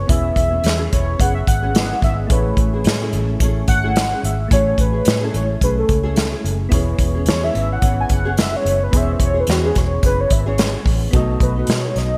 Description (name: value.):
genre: indie pop, bedroom pop.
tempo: 109 BPM.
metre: 4/4.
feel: swing 55% on 16ths.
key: E major.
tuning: A4 = 441 Hz.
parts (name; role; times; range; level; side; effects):
warm velvety synth lead; melody; 0.0-12.2 s; F#4 to G#5; -24 LUFS; equal; subtle chorus, digital delay.
nylon-string guitar; accompaniment; 0.0-12.2 s; B2 to G#4; -29 LUFS; equal; ensemble chorus, warbly pitch drift.
soft electric-piano-like synth keys; accompaniment; 0.0-12.2 s; A3 to G#5; -30 LUFS; equal; chorus, cassette tape.
vintage muted fingered electric bass; bass; 0.0-12.2 s; E1 to B2; -23 LUFS; equal; none.
unplugged drum kit; drums; 0.1-12.1 s; hi-hat, kick drum, snare drum; -21 LUFS; equal; gated reverb.
room: light reverb, studio reverb.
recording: bright 1980s-style digital production.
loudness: -18 LUFS.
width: mono.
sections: 0.0-11.1 A section; 11.1-12.2 B section.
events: soft synth lead solo 0.0-11.1.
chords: 0.0 E6; 2.3 Amaj7; 6.7 E6; 11.1 B7.